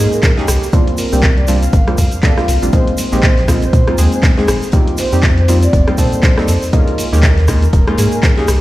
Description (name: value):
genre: deep house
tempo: 120 BPM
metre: 4/4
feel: swing 57% on 16ths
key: unclear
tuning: A4 = 438 Hz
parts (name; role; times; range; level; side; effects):
- deep mellow chord stab; stabs; 0.0-8.5 s; G3 to A4; -18 LUFS; equal; chorus, sidechain pumping, tape echo
- warm sub bass; bass; 0.0-8.6 s; Eb1 to Bb2; -14 LUFS; equal; sidechain pumping
- breathy flute-like synth lead; melody; 0.1-8.6 s; F4 to F5; -22 LUFS; equal; analog chorus, digital delay
- punchy analog drum machine; drums; 0.1-8.6 s; handclaps, hi-hat, rim click; -21 LUFS; equal; none
- egg shaker; percussion; 0.1-8.6 s; none; -27 LUFS; right 1 dB; none
- electronic kick drum; drums; 0.2-8.3 s; none; -12 LUFS; equal; overdrive
- tight metal drum kit; drums; 0.2-8.6 s; hi-hat, snare drum; -32 LUFS; left 2 dB; none
room: studio reverb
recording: played on a big sound system in a bare room, large studio reverb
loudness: -10 LUFS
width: side -16 dB against mid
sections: 0.0-8.6 A section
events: none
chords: 0.5 C9sus4; 2.7 Bb9sus4; 4.7 F9sus4; 6.7 Eb9sus4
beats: 0.23 | 0.73 1.23 1.73 2.23 | 2.73 3.23 3.73 4.23 | 4.73 5.23 5.73 6.23 | 6.73 7.23 7.73 8.23